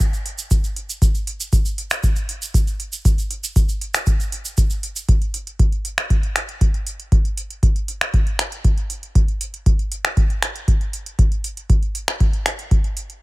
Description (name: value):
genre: techno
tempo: 118 BPM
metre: 4/4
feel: straight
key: none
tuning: none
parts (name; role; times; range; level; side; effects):
- booming analog drum machine; drums; 0.0-13.2 s; finger snaps, hi-hat; -25 LUFS; equal; overdrive
- electronic kick drum; drums; 0.0-12.8 s; none; -17 LUFS; equal; overdrive
- cabasa; percussion; 0.0-5.1 s; none; -29 LUFS; right 4 dB; none
room: little or no reverb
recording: none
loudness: -18 LUFS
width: side -21 dB against mid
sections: 0.0-5.1 A section; 5.1-13.2 A section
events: none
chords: none